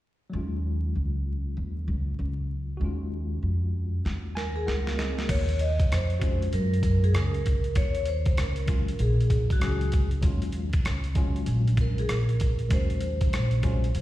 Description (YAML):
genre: hip hop, jazz-hop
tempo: 97 BPM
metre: 4/4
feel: swing 63% on 16ths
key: Eb dorian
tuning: A4 = 442 Hz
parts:
  - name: tine electric piano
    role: accompaniment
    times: 0.3-13.9 s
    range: F3 to Ab5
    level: -35 LUFS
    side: left 2 dB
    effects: overdrive, fast stereo tremolo, slapback echo
  - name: upright bass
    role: bass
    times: 0.3-14.0 s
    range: Bb1 to Gb2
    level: -26 LUFS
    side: equal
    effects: none
  - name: boom bap sampler-style drum kit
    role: drums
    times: 4.1-14.0 s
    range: crash cymbal, hi-hat, kick drum, rim click, snare drum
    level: -27 LUFS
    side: equal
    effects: none
  - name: vibraphone with medium mallets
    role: melody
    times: 4.4-14.0 s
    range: Gb4 to Eb5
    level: -32 LUFS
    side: equal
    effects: slapback echo
room: little or no reverb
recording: live gig heard through the venue's PA, recital hall reverb, vinyl crackle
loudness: -24 LUFS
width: side -15 dB against mid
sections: 0.3-5.3 A section; 5.3-14.0 B section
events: tine electric piano fill 4.0-5.3; drum fill 4.0-5.3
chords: 0.3 Ebm11